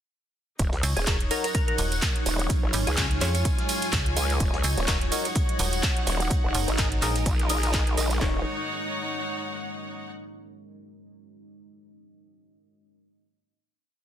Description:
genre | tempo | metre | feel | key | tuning
bass house | 126 BPM | 4/4 | swing 56% on 16ths | Eb minor | A4 = 438 Hz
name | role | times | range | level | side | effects
deep dark ambient pad | sustained chords | 1.2-8.4 s | Gb3 to Db5 | -35 LUFS | right 1 dB | chorus, built-in reverb, sidechain pumping
vowel-sweep wobble bass | bass | 0.6-8.4 s | Eb1 to Db2 | -27 LUFS | equal | chorus, overdrive, sidechain pumping
dusty soul sampler-style drum kit | drums | 0.6-8.2 s | hi-hat, shaker, snare drum | -39 LUFS | equal | none
house drum kit | drums | 0.6-8.3 s | handclaps, kick drum, snare drum | -26 LUFS | equal | small room reverb
house drum kit | drums | 0.6-8.2 s | handclaps, hi-hat, ride cymbal | -30 LUFS | right 2 dB | small room reverb
tambourine | percussion | 0.6-8.2 s | none | -35 LUFS | right 6 dB | none
clear studio string section | texture | 0.6-10.1 s | Eb4 to Ab5 | -33 LUFS | left 1 dB | sidechain pumping
metallic FM bass | bass | 0.8-7.2 s | Eb1 to F2 | -27 LUFS | equal | tube saturation, sidechain pumping
glassy wavetable pluck | melody | 1.0-3.4 s | Ab4 to Db5 | -33 LUFS | equal | chorus, vintage 12-bit sampler grit, tape echo
percussive organ stab | stabs | 1.1-8.4 s | Db4 to Eb5 | -34 LUFS | left 5 dB | chorus, phaser, sidechain pumping, tape echo
room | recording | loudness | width
little or no reverb | dense, heavily limited modern master | -23 LUFS | side -10 dB against mid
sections
0.6-8.2 drop; 8.2-10.1 final chord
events
drop 0.6-8.2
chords
0.6 Ebm7; 2.5 Db; 4.4 Ebm7; 6.3 Absus2; 8.2 Ebm7

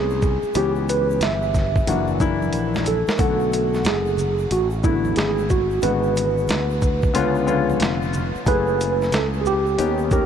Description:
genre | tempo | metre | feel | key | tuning
hip hop, jazz-hop | 91 BPM | 4/4 | swing 64% on 16ths | F# minor | A4 = 437 Hz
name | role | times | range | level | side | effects
mellow tine electric piano | melody | 0.0-10.3 s | E4 to E5 | -23 LUFS | right 3 dB | medium stereo tremolo, analog delay
dark concert grand piano | accompaniment | 0.0-10.3 s | D3 to A#4 | -24 LUFS | left 7 dB | wide subtle chorus
sustaining fretless electric bass | bass | 0.0-10.3 s | E#1 to D#2 | -24 LUFS | equal | none
egg shaker and congas | percussion | 0.1-10.3 s | none | -36 LUFS | right 8 dB | none
dusty soul sampler-style drum kit | drums | 0.2-10.3 s | hi-hat, kick drum, shaker, snare drum | -25 LUFS | equal | none
room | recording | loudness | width
moderate huge ambient reverb, RT60 7.3 s | dreamy mix soaked in reverb | -18 LUFS | side -8 dB against mid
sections
0.0-10.3 A section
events
drum fill 2.5-3.2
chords
0.0 Amaj9; 0.6 C#m7b5; 1.9 F#aug7; 3.2 Bm7; 5.8 G#m7b5; 7.1 C#7b9; 8.5 F#m9

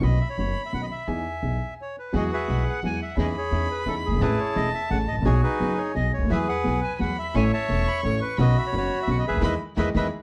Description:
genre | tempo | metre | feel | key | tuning
tango | 173 BPM | 3/4 | rubato | E major | A4 = 440 Hz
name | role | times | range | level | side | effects
bandoneon | melody | 0.0-10.1 s | D#4 to B5 | -30 LUFS | equal | none
warm violin | second line | 0.0-10.1 s | F#5 to C#6 | -35 LUFS | equal | none
warm concert grand piano | accompaniment | 0.0-10.1 s | E1 to A4 | -30 LUFS | equal | none
upright bass | bass | 0.0-10.1 s | E1 to E2 | -28 LUFS | equal | none
clear studio string section | stabs | 2.1-10.1 s | G#3 to B4 | -40 LUFS | equal | none
room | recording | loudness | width
light reverb | dark, warm production | -25 LUFS | mono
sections
0.0-2.1 A section; 2.1-10.2 A section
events
stop 1.8-2.1; band accent 9.4-10.2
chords
0.0 Badd9; 1.1 Emaj7; 2.1 Eadd9; 3.2 C#madd9/E; 4.2 Amaj7; 5.3 B6; 6.3 Eadd9; 7.4 A; 8.4 Badd9; 9.4 Emaj7

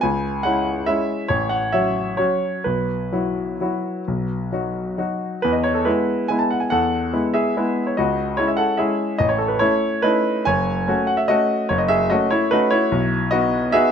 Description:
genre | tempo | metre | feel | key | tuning
classical, piano waltz | 125-153 BPM | 3/4 | rubato | E major | A4 = 439 Hz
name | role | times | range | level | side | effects
clear grand piano | solo | 0.0-13.9 s | F#1 to A5 | -18 LUFS | equal | none
room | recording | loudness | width
moderate recital hall reverb, RT60 1.4 s | close, detailed microphones | -18 LUFS | side -7 dB against mid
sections
0.0-5.4 A section; 5.4-13.9 B section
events
none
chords
0.0 C#m; 1.3 F#m7/A; 2.7 Bsus4; 4.1 B; 5.4 E; 8.0 C#m; 9.2 A; 10.5 F#m; 12.9 B

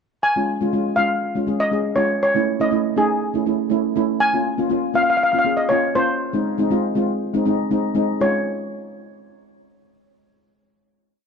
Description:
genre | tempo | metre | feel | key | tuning
calypso | 120 BPM | 4/4 | swing 54% on 16ths | Db major | A4 = 440 Hz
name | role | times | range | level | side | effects
steel pan | melody | 0.2-8.4 s | G#4 to Ab5 | -20 LUFS | equal | none
steel pan | accompaniment | 0.4-8.4 s | Ab3 to Ab4 | -20 LUFS | equal | none
room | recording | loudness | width
light reverb | close, detailed microphones, lossy compression artefacts | -18 LUFS | side -6 dB against mid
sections
0.2-8.2 verse; 8.2-10.2 final chord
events
none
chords
0.2 Db; 2.2 Amaj7; 4.2 Bbm7; 6.2 Ab; 8.2 Db

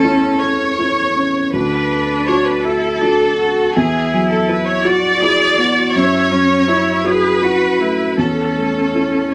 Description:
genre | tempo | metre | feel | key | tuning
neoclassical piano and strings | 54 BPM (dotted quarters) | 6/8 | rubato | A major | A4 = 438 Hz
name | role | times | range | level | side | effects
bright chamber violin section | melody | 0.0-9.3 s | G#4 to D5 | -19 LUFS | equal | none
rich cello | second line | 0.0-9.3 s | C#4 to G#4 | -22 LUFS | equal | none
felt-muted upright piano | accompaniment | 0.0-9.3 s | D2 to A4 | -20 LUFS | equal | none
room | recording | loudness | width
wet small room reverb, RT60 0.6 s | none | -15 LUFS | mono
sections
0.0-9.3 A section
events
none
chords
0.0 A/E; 1.5 D; 3.7 Esus2; 5.9 F#m7; 8.2 A/E

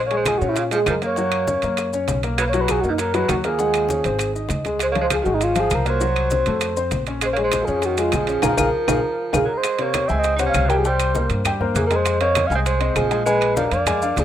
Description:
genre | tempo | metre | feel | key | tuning
Afro-Cuban jazz | 198 BPM | 4/4 | straight | Bb minor | A4 = 440 Hz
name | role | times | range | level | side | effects
upright bass | bass | 0.0-14.2 s | Ab1 to Bb2 | -25 LUFS | right 1 dB | none
reedy FM lead | melody | 0.1-14.2 s | D#4 to Gb5 | -22 LUFS | right 1 dB | chorus
clear tenor saxophone | second line | 0.1-14.2 s | B2 to Eb4 | -29 LUFS | right 5 dB | none
warm upright piano | accompaniment | 0.1-14.2 s | C3 to Ab5 | -23 LUFS | left 3 dB | none
congas | percussion | 0.1-14.2 s | none | -31 LUFS | equal | none
timbales | percussion | 0.1-14.2 s | none | -28 LUFS | right 11 dB | none
bongos | percussion | 0.3-14.2 s | none | -34 LUFS | left 8 dB | none
claves | percussion | 0.3-14.0 s | none | -31 LUFS | left 10 dB | none
maracas | percussion | 0.3-14.2 s | none | -35 LUFS | left 6 dB | none
room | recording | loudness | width
light reverb, studio reverb | rough home demo mix | -18 LUFS | side -10 dB against mid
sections
0.0-9.6 A section; 9.6-14.2 B section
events
drum fill 8.4-9.6; band accent 8.4-9.6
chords
0.0 Bbm7; 1.2 Gb; 2.4 Bmaj7; 3.6 Ebm11; 4.2 Ab; 4.8 Dbmaj7; 6.0 F#dim/C; 6.6 F; 7.2 Bbm7; 9.6 Db5; 10.8 C5; 12.1 Fm7; 13.3 Bb7b9

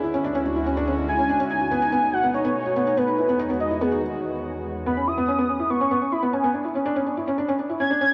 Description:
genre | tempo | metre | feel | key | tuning
IDM | 143 BPM | 4/4 | straight | C# minor | A4 = 440 Hz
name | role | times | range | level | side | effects
warbly tape-like pad | sustained chords | 0.0-4.8 s | D2 to F#4 | -32 LUFS | equal | chorus, built-in reverb, phaser
felt-muted upright piano | arpeggios | 0.0-8.1 s | B3 to F#4 | -27 LUFS | equal | low-pass filter, digital delay
warm velvety synth lead | melody | 1.1-8.1 s | G#4 to G#6 | -27 LUFS | equal | chorus, delay
room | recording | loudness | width
wet huge ambient reverb, RT60 6.5 s | worn, warbling old tape, cassette tape, warbly pitch drift | -23 LUFS | mono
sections
0.0-4.9 A section; 4.9-8.1 A section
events
break 4.0-4.9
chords
0.0 Dmaj9#11; 1.5 B7; 3.2 Emaj9; 4.9 C#m7; 6.5 Dsus2

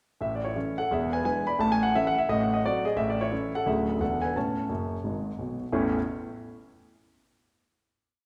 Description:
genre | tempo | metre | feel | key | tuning
jazz, stride piano | 174 BPM | 4/4 | swing 61% on 8ths | A major | A4 = 440 Hz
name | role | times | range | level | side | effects
warm concert grand piano | solo | 0.2-6.0 s | D1 to B5 | -28 LUFS | equal | none
room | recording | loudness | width
wet recital hall reverb, RT60 1.7 s | recorded in a church or concert hall | -28 LUFS | mono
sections
0.2-5.7 A section; 5.7-7.1 final chord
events
grand piano fill 4.7-5.7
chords
0.2 A; 0.9 E7; 1.6 A; 2.3 Adim7; 3.0 A; 3.7 Dmaj7; 4.0 E7; 4.4 A

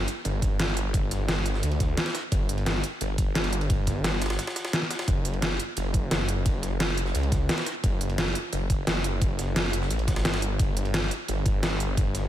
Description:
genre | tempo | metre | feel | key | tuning
dark technical drum and bass | 174 BPM | 4/4 | straight | unclear | A4 = 441 Hz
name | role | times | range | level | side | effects
snarling distorted saw bass | bass | 0.0-12.3 s | F#1 to D2 | -27 LUFS | equal | distortion, overdrive
dubstep drum kit | drums | 0.1-12.2 s | hi-hat, snare drum | -29 LUFS | equal | none
jungle sampler-style drum kit | drums | 0.1-12.2 s | ride cymbal, snare drum | -38 LUFS | right 1 dB | high-pass filter on snare, high-pass filter on cymbals
electronic kick drum | drums | 0.4-12.0 s | none | -25 LUFS | equal | overdrive
room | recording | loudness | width
digital ambience | none | -24 LUFS | side -12 dB against mid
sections
0.0-12.3 A section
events
break 4.4-5.1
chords
none

